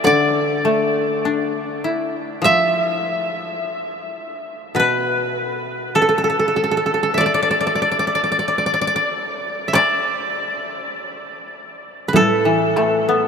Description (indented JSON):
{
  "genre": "japanese traditional, Japanese chamber music",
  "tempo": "46-52 BPM",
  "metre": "4/4",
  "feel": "rubato",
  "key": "D kumoi",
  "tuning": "A4 = 441 Hz",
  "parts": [
    { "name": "koto", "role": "melody", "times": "0.0-13.3 s", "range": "A4 to F5", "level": "-20 LUFS", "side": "left 1 dB", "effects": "none" },
    { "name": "koto", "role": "second line", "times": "0.0-13.3 s", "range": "A4 to F5", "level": "-22 LUFS", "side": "right 2 dB", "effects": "none" },
    { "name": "koto", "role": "accompaniment", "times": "0.0-13.3 s", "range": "A2 to E4", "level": "-20 LUFS", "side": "left 2 dB", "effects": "none" },
    { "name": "taiko ensemble", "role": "percussion", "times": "9.7-13.0 s", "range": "none", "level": "-25 LUFS", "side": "right 3 dB", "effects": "none" }
  ],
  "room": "wet huge ambient reverb, RT60 8.6 s",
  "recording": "in a vast, echoing space",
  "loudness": "-17 LUFS",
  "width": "side -6 dB against mid",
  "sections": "0.0-9.7 A section; 9.7-13.3 B section",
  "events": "none",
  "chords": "none",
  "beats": "| 0.06 1.26 2.44 3.60 | 4.77 5.96 7.20 8.47 | 9.74 10.95 12.15"
}